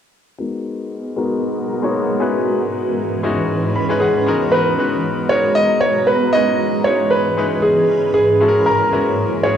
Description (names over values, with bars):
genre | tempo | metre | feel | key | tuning
amapiano | 116 BPM | 4/4 | swing 55% on 16ths | G# minor | A4 = 440 Hz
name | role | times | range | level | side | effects
bright concert grand piano | accompaniment | 0.4-9.6 s | G#3 to B5 | -21 LUFS | left 3 dB | low-pass filter, cassette tape
granular cloud pad | sustained chords | 1.0-9.6 s | G#2 to A#5 | -20 LUFS | right 1 dB | built-in reverb, low-pass filter, cassette tape
warm concert grand piano | melody | 4.0-9.6 s | G#4 to D#5 | -15 LUFS | right 1 dB | cassette tape, tape echo
room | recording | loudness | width
moderate spring reverb, RT60 1.8 s, studio reverb | home recording on cassette | -14 LUFS | side -9 dB against mid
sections
0.4-4.5 A section; 4.5-9.6 B section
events
filter sweep 0.4-4.5; grand piano fill 3.5-4.5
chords
0.4 G#m9; 2.2 C#m7/G#; 4.3 G#m9; 6.3 C#m7/G#; 8.4 F#9/G#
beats
| 0.39 0.91 1.42 1.94 | 2.46 2.97 3.49 4.01 | 4.53 5.04 5.56 6.08 | 6.59 7.11 7.63 8.15 | 8.66 9.18